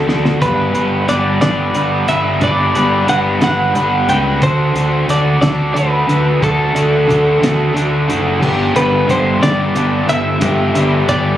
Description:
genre	indie rock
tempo	60 BPM (dotted quarters)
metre	6/8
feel	straight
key	G major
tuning	A4 = 439 Hz
part	twelve-string electric guitar	melody	0.0-11.4 s	A4 to G5	-17 LUFS	equal	slapback echo
part	crunchy overdriven guitar	riff	0.0-11.4 s	G2 to B4	-16 LUFS	equal	none
part	growling fingered electric bass	bass	0.0-11.4 s	F#1 to D2	-18 LUFS	equal	overdrive
part	cloth-damped thuddy drum kit	drums	0.1-11.2 s	crash cymbal, hi-hat, kick drum, snare drum	-19 LUFS	equal	none
room	light reverb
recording	recorded on a phone in the room, club reverb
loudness	-12 LUFS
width	side -12 dB against mid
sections	0.0-8.4 A section; 8.4-11.4 B section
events	drum fill 0.0-0.4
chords	0.4 G; 4.4 D; 8.4 G

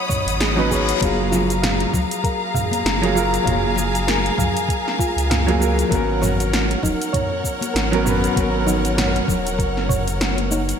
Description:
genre	sunset chillout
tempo	98 BPM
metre	4/4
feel	swing 57% on 16ths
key	F# major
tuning	A4 = 440 Hz
part	warm baby grand piano	accompaniment	0.0-10.8 s	F#3 to C#5	-23 LUFS	right 1 dB	auto-pan, ping-pong delay, shimmer reverb
part	rich symphonic string section	sustained chords	0.0-10.8 s	G#4 to D#6	-24 LUFS	left 2 dB	shimmer reverb
part	reverse cymbal	sound effects	0.2-1.0 s	none	-30 LUFS	left 6 dB	none
part	soft round pluck	arpeggios	0.1-10.8 s	D#4 to E#5	-28 LUFS	right 2 dB	chorus, ping-pong delay, shimmer reverb
part	deep house drum kit	drums	0.1-10.8 s	hi-hat, shaker, snare drum, toms	-24 LUFS	equal	overdrive, gated reverb
part	electronic kick drum	drums	0.1-10.0 s	none	-24 LUFS	equal	none
part	round analog bass	bass	0.3-10.7 s	D#1 to C#2	-24 LUFS	equal	none
part	congas	percussion	0.6-10.6 s	none	-30 LUFS	left 4 dB	none
room	moderate lush hall reverb, RT60 2.9 s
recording	bright 1980s-style digital production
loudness	-17 LUFS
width	side -7 dB against mid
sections	0.0-1.0 A section; 1.0-10.8 B section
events	reverse cymbal 0.2-1.0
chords	0.0 C#9sus4; 1.0 F#maj9; 5.9 G#m11

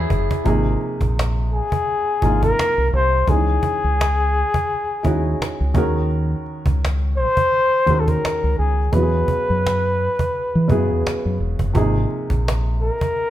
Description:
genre	R&B, neo-soul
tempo	85 BPM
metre	4/4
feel	swing 57% on 16ths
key	Ab mixolydian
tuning	A4 = 439 Hz
part	dark upright piano	accompaniment	0.0-13.3 s	C3 to Bb4	-24 LUFS	right 1 dB	none
part	deep dub fingered electric bass	bass	0.0-12.9 s	E1 to E3	-20 LUFS	equal	none
part	cajon	drums	0.1-13.3 s	none	-24 LUFS	right 1 dB	none
part	breathy flugelhorn	melody	1.5-13.3 s	Ab4 to C5	-20 LUFS	left 2 dB	none
room	light reverb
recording	band playing live in one room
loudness	-17 LUFS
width	side -12 dB against mid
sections	0.5-13.3 A section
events	drum fill 0.0-0.5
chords	0.5 Ab69; 3.3 Dbmadd9; 5.7 Ebm7; 8.9 Eadd9; 11.7 Ab69

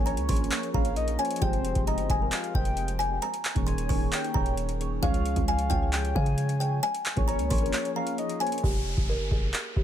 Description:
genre	hip hop, trap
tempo	133 BPM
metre	4/4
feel	half-time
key	F minor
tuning	A4 = 440 Hz
part	kalimba	melody	0.0-9.8 s	G4 to Db6	-32 LUFS	equal	low-pass filter, ping-pong delay
part	soft electric-piano-like synth keys	accompaniment	0.0-8.7 s	Eb3 to Eb5	-33 LUFS	right 2 dB	chorus, phaser, low-pass filter
part	warm 808-style bass	bass	0.0-9.8 s	Eb1 to Db3	-29 LUFS	equal	none
part	soft octave-layered synth lead	second line	0.1-8.6 s	C5 to Ab5	-35 LUFS	left 4 dB	chorus, ping-pong delay
part	booming analog drum machine	drums	0.1-9.8 s	handclaps, hi-hat, kick drum	-28 LUFS	equal	none
part	downlifter	sound effects	8.6-9.8 s	none	-36 LUFS	equal	none
room	little or no reverb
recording	none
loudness	-25 LUFS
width	side -10 dB against mid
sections	0.0-8.6 A section; 8.6-9.8 B section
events	break 7.7-8.6; hi-hats muted 8.6-9.8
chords	0.0 Bbm7; 1.4 Fmadd9; 3.2 Eb7sus4; 5.0 Db; 6.8 Bbm7; 8.6 Fsus2

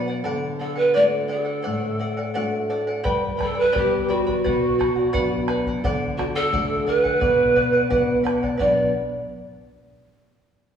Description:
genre	andean folk, Andean ensemble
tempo	86 BPM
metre	2/4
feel	straight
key	B minor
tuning	A4 = 435 Hz
part	charango	accompaniment	0.0-8.9 s	G4 to B5	-27 LUFS	right 1 dB	none
part	nylon-string guitar	accompaniment	0.0-8.9 s	G2 to F#4	-26 LUFS	left 2 dB	none
part	mellow pan flute	melody	0.6-8.9 s	F#4 to D5	-21 LUFS	right 1 dB	none
part	bombo	percussion	3.1-8.9 s	none	-30 LUFS	equal	none
room	wet recital hall reverb, RT60 1.8 s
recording	recorded in a church or concert hall, small room ambience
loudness	-19 LUFS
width	side -8 dB against mid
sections	0.0-8.6 A section; 8.6-10.0 B section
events	none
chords	0.3 D; 3.0 G; 4.4 Bm; 5.8 D; 7.2 Bm

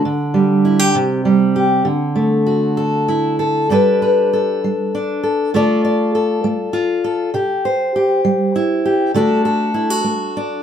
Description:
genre	folk, solo fingerstyle acoustic guitar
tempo	66 BPM (dotted quarters)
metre	6/8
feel	rubato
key	G major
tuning	A4 = 438 Hz
part	fingerpicked steel-string acoustic guitar	solo	0.0-10.6 s	G2 to D5	-14 LUFS	equal	none
room	light reverb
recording	none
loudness	-14 LUFS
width	side -8 dB against mid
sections	0.0-3.7 A section; 3.7-10.6 B section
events	none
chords	0.1 G5/D; 0.9 C5; 1.9 Dadd9; 3.7 Gadd9; 5.5 Dm; 7.3 C; 9.1 D

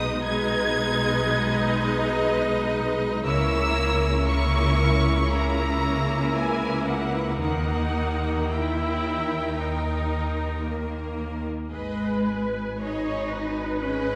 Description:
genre	classical, slow romantic movement for string orchestra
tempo	54-61 BPM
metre	4/4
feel	rubato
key	G# minor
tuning	A4 = 442 Hz
part	rich symphonic violin section	melody	0.0-14.2 s	F#5 to G#6	-33 LUFS	equal	none
part	clear symphonic violin section	second line	0.0-14.2 s	G#4 to D#5	-33 LUFS	equal	none
part	clear symphonic viola section	accompaniment	0.0-14.2 s	G#3 to C#5	-30 LUFS	equal	none
part	rich symphonic double bass section	bass	0.0-14.2 s	G#1 to D#2	-30 LUFS	equal	none
part	warm symphonic cello section	bass	0.0-14.2 s	B2 to D#4	-32 LUFS	equal	none
room	wet scoring stage reverb, RT60 1.9 s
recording	recorded in a church or concert hall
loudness	-25 LUFS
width	mono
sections	0.0-11.7 A section; 11.7-14.2 B section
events	none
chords	0.0 G#m/B; 3.2 A#dim/C#; 7.4 D#; 11.7 G#m

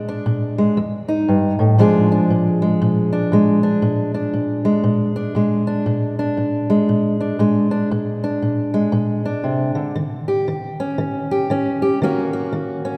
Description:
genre	blues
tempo	118 BPM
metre	4/4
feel	swing 61% on 8ths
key	Bb mixolydian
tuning	A4 = 440 Hz
part	fingerpicked steel-string acoustic guitar	solo	0.0-13.0 s	F2 to Ab4	-19 LUFS	equal	none
room	wet church reverb, RT60 2.9 s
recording	recorded in a church or concert hall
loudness	-19 LUFS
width	mono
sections	0.0-1.8 A section; 1.8-13.0 B section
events	none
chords	0.0 Bb7; 0.8 F7; 1.8 Bb7; 10.0 Eb7; 12.0 Ebm7

